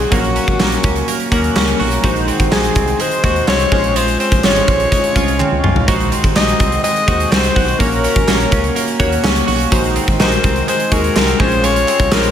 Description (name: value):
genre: 1980s-style pop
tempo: 125 BPM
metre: 4/4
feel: straight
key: unclear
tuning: A4 = 440 Hz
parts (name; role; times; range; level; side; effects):
- bright alto saxophone; melody; 0.0-12.3 s; Gb4 to Eb5; -18 LUFS; left 3 dB; none
- chorused retro synth keys; accompaniment; 0.0-12.3 s; Gb3 to Bb5; -19 LUFS; left 1 dB; none
- twelve-string electric guitar; riff; 0.0-12.3 s; Eb3 to Gb4; -22 LUFS; right 6 dB; wide subtle chorus
- solid FM bass; bass; 0.0-12.3 s; Ab1 to Eb2; -20 LUFS; equal; none
- big rock drum kit; drums; 0.0-12.3 s; hi-hat, kick drum, snare drum, tambourine, toms; -16 LUFS; equal; gated reverb
- group handclap; percussion; 0.6-12.2 s; none; -31 LUFS; right 5 dB; none
room: light reverb, small room reverb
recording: none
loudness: -12 LUFS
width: side -9 dB against mid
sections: 0.0-12.3 A section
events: synth keys fill 1.3-2.0; drum fill 5.4-5.9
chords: 0.1 Gb; 2.0 Ab7; 3.7 Dbmaj7; 5.9 Ab7; 7.8 Gb; 9.7 Ab7; 11.4 Dbmaj7/Bb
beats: | 0.12 0.60 1.08 1.56 | 2.04 2.52 3.00 3.48 | 3.96 4.44 4.92 5.40 | 5.88 6.36 6.84 7.32 | 7.80 8.28 8.76 9.24 | 9.72 10.20 10.68 11.16 | 11.64 12.12